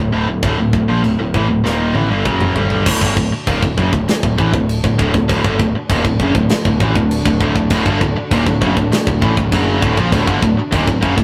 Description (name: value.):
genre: heavy metal.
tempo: 99 BPM.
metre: 4/4.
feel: straight.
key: unclear.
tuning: A4 = 440 Hz.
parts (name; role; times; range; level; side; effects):
sludgy distorted guitar; riff; 0.0-11.2 s; D2 to G3; -25 LUFS; equal; none.
tight distorted guitar; riff; 0.0-11.2 s; D2 to G3; -20 LUFS; equal; distortion.
growling picked electric bass; bass; 0.0-11.2 s; D1 to Bb1; -23 LUFS; equal; overdrive.
tight metal drum kit; drums; 0.4-11.2 s; china cymbal, crash cymbal, kick drum, snare drum, toms; -21 LUFS; equal; none.
warm chamber string section; sustained chords; 2.8-11.2 s; D3 to F#4; -27 LUFS; equal; none.
heavy high-gain guitar; riff; 7.7-11.2 s; D2 to F#3; -25 LUFS; equal; distortion.
room: moderate studio reverb, RT60 0.5 s.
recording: rough rehearsal-room recording.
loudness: -15 LUFS.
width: mono.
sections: 0.0-2.9 A section; 2.9-11.2 B section.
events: drum fill 1.6-2.9.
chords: 0.0 D.